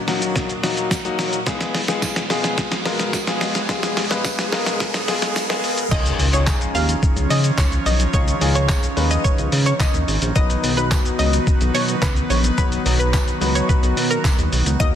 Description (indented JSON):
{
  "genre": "dance-pop",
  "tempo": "108 BPM",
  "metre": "4/4",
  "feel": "straight",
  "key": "unclear",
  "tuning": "A4 = 440 Hz",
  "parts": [
    { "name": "airy breathy pad", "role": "sustained chords", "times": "0.0-15.0 s", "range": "Eb2 to Gb4", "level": "-26 LUFS", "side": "right 2 dB", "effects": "chorus, sidechain pumping" },
    { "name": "riser and impact", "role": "sound effects", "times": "0.0-8.1 s", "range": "none", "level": "-28 LUFS", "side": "equal", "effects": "none" },
    { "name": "clear concert grand piano", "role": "accompaniment", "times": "0.1-15.0 s", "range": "Gb3 to Db5", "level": "-25 LUFS", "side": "left 4 dB", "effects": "sidechain pumping" },
    { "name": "trip hop sampler-style drum kit", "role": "drums", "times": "0.1-14.9 s", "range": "crash cymbal, handclaps, hi-hat, kick drum, shaker, snare drum", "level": "-21 LUFS", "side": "equal", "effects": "none" },
    { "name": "tambourine", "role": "percussion", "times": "0.9-14.4 s", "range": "none", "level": "-34 LUFS", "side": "right 6 dB", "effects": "none" },
    { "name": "analog pluck", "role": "melody", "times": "5.9-15.0 s", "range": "Bb4 to F5", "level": "-25 LUFS", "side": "equal", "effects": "chorus, sidechain pumping, ping-pong delay" },
    { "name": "chorused synth bass", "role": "bass", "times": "5.9-15.0 s", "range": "Ab1 to Db3", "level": "-20 LUFS", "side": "equal", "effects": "sidechain pumping" }
  ],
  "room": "light reverb",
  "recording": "dense, heavily limited modern master, high-pass filter",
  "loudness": "-17 LUFS",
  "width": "side -9 dB against mid",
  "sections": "0.0-5.9 A section; 5.9-15.0 B section",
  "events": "build-up 0.0-5.9; drum fill 0.0-5.9; riser 0.0-5.9; drop 5.9-15.0; impact 5.9-8.1",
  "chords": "0.0 Ebm; 1.5 Fdim; 5.9 Dbadd9; 10.4 B"
}